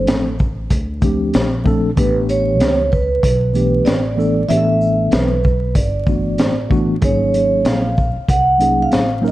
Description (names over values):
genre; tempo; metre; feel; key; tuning
hip hop, jazz-hop; 95 BPM; 4/4; swing 61% on 16ths; unclear; A4 = 440 Hz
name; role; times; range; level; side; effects
vibraphone with soft mallets; melody; 0.0-9.3 s; B4 to Gb5; -18 LUFS; right 2 dB; slapback echo
mellow tine electric piano; accompaniment; 0.0-9.3 s; E3 to Bb4; -19 LUFS; left 1 dB; medium stereo tremolo
upright bass; bass; 0.0-9.3 s; G1 to D2; -21 LUFS; equal; none
crunchy breakbeat drum kit; drums; 0.1-9.3 s; hi-hat, kick drum, shaker, snare drum; -18 LUFS; equal; none
room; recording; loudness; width
light reverb; dark, warm production, vinyl crackle; -14 LUFS; side -16 dB against mid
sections
0.0-9.3 A section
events
none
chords
0.0 G9sus4; 2.0 A9sus4; 7.0 Ab9sus4